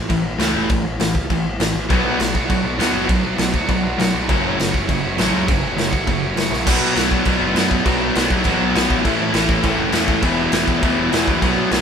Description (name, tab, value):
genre	punk rock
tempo	202 BPM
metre	4/4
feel	straight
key	B minor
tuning	A4 = 441 Hz
part	growling picked electric bass	bass	0.0-11.8 s	E1 to B2	-26 LUFS	equal	overdrive
part	sludgy distorted guitar	riff	0.1-11.8 s	E2 to B3	-22 LUFS	left 8 dB	overdrive
part	sludgy distorted guitar	riff	0.1-11.8 s	E2 to B3	-22 LUFS	right 7 dB	overdrive
part	raw garage drum kit	drums	0.1-11.8 s	crash cymbal, kick drum, snare drum	-20 LUFS	equal	none
part	high-gain distorted guitar	riff	1.9-11.8 s	F#2 to F#4	-23 LUFS	right 1 dB	distortion
room	light reverb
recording	band playing live in one room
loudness	-16 LUFS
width	side -7 dB against mid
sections	0.0-6.7 A section; 6.7-11.8 B section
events	drum fill 6.5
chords	0.0 A; 1.9 Bm; 4.3 F#m; 6.7 Bm; 9.0 A; 10.2 Em